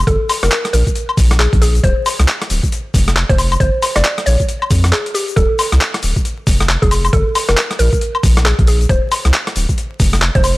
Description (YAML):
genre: UK garage, two-step garage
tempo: 136 BPM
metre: 4/4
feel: swing 61% on 16ths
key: unclear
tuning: A4 = 442 Hz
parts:
  - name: soft dub sub bass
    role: bass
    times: 0.0-10.6 s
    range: D1 to F2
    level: -14 LUFS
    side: equal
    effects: none
  - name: mallet-like synth pluck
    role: melody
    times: 0.1-10.5 s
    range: G4 to D5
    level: -20 LUFS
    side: equal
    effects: chorus, tape echo
  - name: boom bap sampler-style drum kit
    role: drums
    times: 0.1-10.5 s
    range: cabasa, handclaps, hi-hat, rim click, woodblock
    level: -17 LUFS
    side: left 1 dB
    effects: overdrive
  - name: electronic kick drum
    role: drums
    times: 0.1-10.4 s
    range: none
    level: -16 LUFS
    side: equal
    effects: overdrive
room: little or no reverb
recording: vinyl crackle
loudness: -12 LUFS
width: side -20 dB against mid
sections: 0.0-10.6 A section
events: break 4.9-5.4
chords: 0.1 F; 0.7 G#sus2/A#; 1.8 Csus2/D; 2.7 F5; 3.6 Fsus2; 4.3 Bb5; 5.4 D5; 6.2 N.C.; 7.1 F; 7.8 G#sus2/A#; 8.9 Csus2/D; 9.8 F5